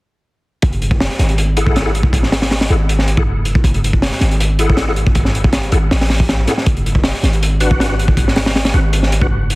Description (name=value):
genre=drum and bass, jungle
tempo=159 BPM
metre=4/4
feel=straight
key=F# minor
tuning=A4 = 441 Hz
part: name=warm 808-style bass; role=bass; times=0.6-9.6 s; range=F#1 to A1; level=-16 LUFS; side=equal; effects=none
part: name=crunchy breakbeat drum kit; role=drums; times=0.6-9.6 s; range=hi-hat, kick drum, snare drum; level=-15 LUFS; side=equal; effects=none
part: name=bright tonewheel organ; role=stabs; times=1.6-9.3 s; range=D4 to F#5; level=-22 LUFS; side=left 2 dB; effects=chorus vibrato, fast rotary speaker, vintage 12-bit sampler grit, dub echo
room=studio reverb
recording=heavily compressed radio sound, multiband compression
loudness=-12 LUFS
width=side -22 dB against mid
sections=0.6-9.6 A section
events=none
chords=0.6 F#m9; 6.7 Bm/F#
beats=| 0.63 1.00 1.38 1.76 | 2.14 2.52 2.89 3.27 | 3.65 4.02 4.40 4.78 | 5.16 5.53 5.91 6.29 | 6.67 7.04 7.42 7.80 | 8.18 8.55 8.93 9.31